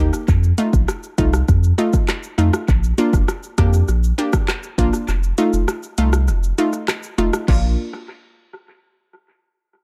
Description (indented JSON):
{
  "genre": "dancehall",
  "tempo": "100 BPM",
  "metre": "4/4",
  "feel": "straight",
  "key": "Bb major",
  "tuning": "A4 = 440 Hz",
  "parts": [
    { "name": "analog pluck", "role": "accompaniment", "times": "0.0-7.8 s", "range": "A3 to G4", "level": "-23 LUFS", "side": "equal", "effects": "chorus, sidechain pumping" },
    { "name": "warm sub bass", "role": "bass", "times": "0.0-7.8 s", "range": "F1 to F2", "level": "-19 LUFS", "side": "equal", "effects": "none" },
    { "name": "afro-pop drum kit", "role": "drums", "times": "0.1-7.6 s", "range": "crash cymbal, handclaps, hi-hat, kick drum, rim click, shaker", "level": "-22 LUFS", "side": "equal", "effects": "tape echo" }
  ],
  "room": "digital ambience",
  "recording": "echo-heavy mix",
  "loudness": "-18 LUFS",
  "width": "mono",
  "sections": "0.0-7.5 A section; 7.5-9.8 B section",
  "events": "kick muted 5.1-7.5",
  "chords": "0.3 F7; 2.7 Bb; 5.1 F7; 7.5 Bb"
}